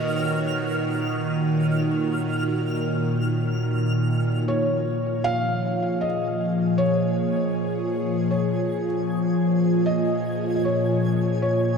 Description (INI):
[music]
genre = ambient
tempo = 78 BPM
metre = 3/4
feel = straight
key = unclear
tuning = A4 = 440 Hz
[part]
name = felt-muted upright piano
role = melody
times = 0.0-11.8 s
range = Db5 to F5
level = -28 LUFS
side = left 1 dB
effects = analog chorus, shimmer reverb, ping-pong delay
[part]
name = evolving wavetable pad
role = sustained chords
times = 0.0-11.8 s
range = Bb2 to Db5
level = -22 LUFS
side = equal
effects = phaser, built-in reverb, shimmer reverb
[part]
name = twinkling granular texture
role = texture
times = 0.0-11.8 s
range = Ab5 to F6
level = -36 LUFS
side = equal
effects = built-in reverb, ensemble chorus, shimmer reverb
[sound]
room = wet cathedral reverb, RT60 5.8 s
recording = dreamy mix soaked in reverb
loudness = -21 LUFS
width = side -5 dB against mid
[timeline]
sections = 0.0-4.5 A section; 4.5-11.8 B section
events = fade-in on synth texture 4.5-11.8; filter sweep on ambient pad 4.5-11.8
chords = 0.0 Ebm7; 4.5 Bbm7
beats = 0.63 1.40 | 2.17 2.94 3.71 | 4.48 5.25 6.02 | 6.79 7.55 8.32 | 9.09 9.86 10.63 | 11.40